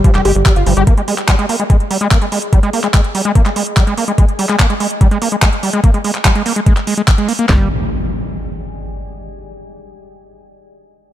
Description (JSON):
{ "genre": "psychedelic trance", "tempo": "145 BPM", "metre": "4/4", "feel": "straight", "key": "unclear", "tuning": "A4 = 438 Hz", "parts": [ { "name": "wide unison lead", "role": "melody", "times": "0.0-0.8 s", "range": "G3 to G4", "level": "-18 LUFS", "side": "equal", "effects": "phaser, sidechain pumping, dub echo" }, { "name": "overdriven acid bass", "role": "riff", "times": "0.0-7.7 s", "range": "F3 to G4", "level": "-17 LUFS", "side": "equal", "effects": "distortion, auto-pan, sidechain pumping, tape echo" }, { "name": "garage drum kit", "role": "drums", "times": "0.0-7.6 s", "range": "handclaps, kick drum, snare drum", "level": "-11 LUFS", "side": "equal", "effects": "none" }, { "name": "garage drum kit", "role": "drums", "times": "0.0-7.5 s", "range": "handclaps, hi-hat", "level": "-19 LUFS", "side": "equal", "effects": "none" }, { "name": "deep dark ambient pad", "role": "texture", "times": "0.0-9.1 s", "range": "G4 to Ab5", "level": "-31 LUFS", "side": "left 3 dB", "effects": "none" }, { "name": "tight sequencer bass", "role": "bass", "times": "0.1-0.8, 7.5-7.7 s", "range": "F1 to G1", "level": "-15 LUFS", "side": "equal", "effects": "none" }, { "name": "impact", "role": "sound effects", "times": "7.6-9.1 s", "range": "none", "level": "-22 LUFS", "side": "equal", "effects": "none" } ], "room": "digital ambience", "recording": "none", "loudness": "-11 LUFS", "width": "side -12 dB against mid", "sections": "0.0-7.5 A section; 7.5-9.1 B section", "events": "none", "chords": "0.0 G5; 0.9 Ab5; 7.5 G5", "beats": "0.04 0.46 | 0.87 1.28 1.70 2.11 | 2.53 2.94 3.35 3.77 | 4.18 4.60 5.01 5.42 | 5.84 6.25 6.67 7.08 | 7.49 7.91 8.32 8.73" }